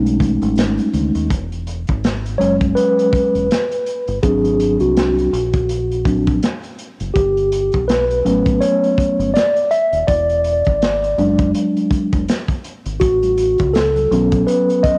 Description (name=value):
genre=hip hop, jazz-hop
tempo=82 BPM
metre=4/4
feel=swing 58% on 16ths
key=E major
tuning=A4 = 440 Hz
part: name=mellow tine electric piano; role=accompaniment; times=0.0-15.0 s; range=F#3 to E5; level=-18 LUFS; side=equal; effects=cassette tape
part: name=deep dub fingered electric bass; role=bass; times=0.0-14.4 s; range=D#1 to D#2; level=-25 LUFS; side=equal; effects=none
part: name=crunchy breakbeat drum kit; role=drums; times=0.1-15.0 s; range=hi-hat, kick drum, snare drum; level=-23 LUFS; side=equal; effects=cassette tape
part: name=tube shaker and congas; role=percussion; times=0.1-1.3, 13.0-15.0 s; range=none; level=-34 LUFS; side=equal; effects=none
room=light reverb, studio reverb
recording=home recording on cassette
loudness=-17 LUFS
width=mono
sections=0.0-1.3 A section; 1.3-15.0 B section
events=tine electric piano solo 0.0-1.3, 1.3-15.0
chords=0.0 B13; 1.3 E69; 4.2 G#7#11; 7.2 Gmaj9#11; 10.1 E7; 13.0 A69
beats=0.57 | 1.30 2.03 2.77 3.50 | 4.23 4.96 5.69 6.42 | 7.16 7.89 8.62 9.35 | 10.08 10.81 11.55 12.28 | 13.01 13.74 14.47